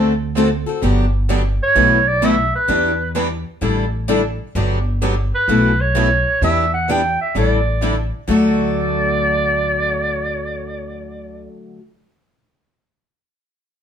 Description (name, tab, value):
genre	acoustic string swing (jazz manouche)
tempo	129 BPM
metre	4/4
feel	swing 64% on 8ths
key	D major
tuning	A4 = 439 Hz
part	picked steel-string acoustic guitar	accompaniment	0.0-11.8 s	B2 to A4	-21 LUFS	left 4 dB	none
part	picked swing-style acoustic guitar	accompaniment	0.0-11.8 s	B2 to B4	-24 LUFS	right 4 dB	none
part	upright bass	bass	0.0-11.5 s	G1 to E2	-21 LUFS	equal	none
part	warm clarinet	melody	1.6-11.5 s	B4 to G5	-18 LUFS	right 2 dB	none
room	moderate studio reverb, RT60 0.7 s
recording	band playing live in one room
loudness	-15 LUFS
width	side -8 dB against mid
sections	0.8-8.3 A section; 8.3-12.0 B section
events	none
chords	0.0 D7; 0.8 Gmaj7; 1.8 B7sus4; 2.7 Em7; 3.6 A7sus4; 4.6 Gmaj7; 5.5 B9sus4; 6.4 Em7; 7.3 A7sus4; 8.3 D